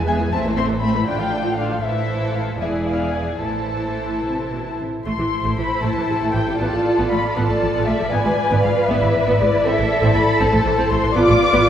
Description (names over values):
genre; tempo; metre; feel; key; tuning
quick classical-period movement for string orchestra; 78 BPM (dotted quarters); 6/8; rubato; A minor; A4 = 440 Hz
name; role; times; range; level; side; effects
muted symphonic violin section; second line; 0.0-11.7 s; F4 to G#5; -25 LUFS; left 2 dB; none
muted symphonic viola section; accompaniment; 0.0-11.7 s; C3 to F4; -22 LUFS; equal; none
muted symphonic cello section; bass; 0.0-11.7 s; E2 to B4; -24 LUFS; right 1 dB; none
muted symphonic double bass section; bass; 0.0-11.7 s; E1 to A1; -24 LUFS; right 2 dB; none
muted symphonic violin section; melody; 0.1-11.7 s; D5 to D6; -23 LUFS; left 3 dB; none
room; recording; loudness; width
wet scoring stage reverb, RT60 1.9 s; heard from further back in the room; -17 LUFS; side -9 dB against mid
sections
0.0-5.1 A section; 5.1-11.7 B section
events
none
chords
0.3 Am; 1.1 Dm/A; 1.8 Am; 2.6 E7; 3.4 Am; 6.6 Bm7b5/A (rootless); 8.1 E7/G#; 9.7 Am; 11.2 Bm7b5/A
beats
| 0.33 1.08 | 1.83 2.61 | 3.42 4.24 | 5.06 5.83 | 6.60 7.37 | 8.13 8.90 | 9.66 10.41 | 11.16